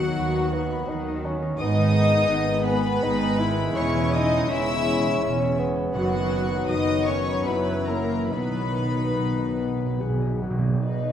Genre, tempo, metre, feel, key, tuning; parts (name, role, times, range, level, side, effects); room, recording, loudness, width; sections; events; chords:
classical, slow romantic movement for symphony orchestra; 69-87 BPM; 3/4; rubato; B major; A4 = 439 Hz
rich studio violin section; melody; 0.0-11.1 s; B4 to E6; -32 LUFS; left 3 dB
mellow hollow large flute ensemble; second line; 0.0-11.1 s; F#4 to E5; -30 LUFS; left 3 dB
rich studio violin section; second line; 0.0-11.1 s; B3 to E5; -35 LUFS; left 3 dB
warm studio viola section; accompaniment; 0.0-11.1 s; F#3 to E4; -31 LUFS; left 1 dB
warm French horn section; sustained chords; 0.0-10.8 s; B3 to B4; -32 LUFS; left 5 dB
warm trombone section; sustained chords; 0.0-10.5 s; C#3 to G#3; -33 LUFS; right 4 dB
concert harp; arpeggios; 0.0-11.1 s; E2 to C#6; -32 LUFS; left 5 dB
dark studio cello section; bass; 0.0-11.1 s; E2 to D#3; -29 LUFS; right 1 dB
rich studio double bass section; bass; 0.0-11.1 s; E1 to D#2; -30 LUFS; right 3 dB
mellow bassoon; accompaniment; 0.2-10.4 s; B3 to F#4; -30 LUFS; right 1 dB
timpani; percussion; 5.9-10.8 s; F#2 to B2; -28 LUFS; right 2 dB
moderate concert hall reverb, RT60 2.1 s; dark, warm production; -21 LUFS; side -9 dB against mid
0.0-10.8 A section
timpani fill 8.3-10.8
0.0 B/D#; 1.6 G#m; 3.8 C#m/E; 6.0 B/F#; 7.5 F#7; 8.3 B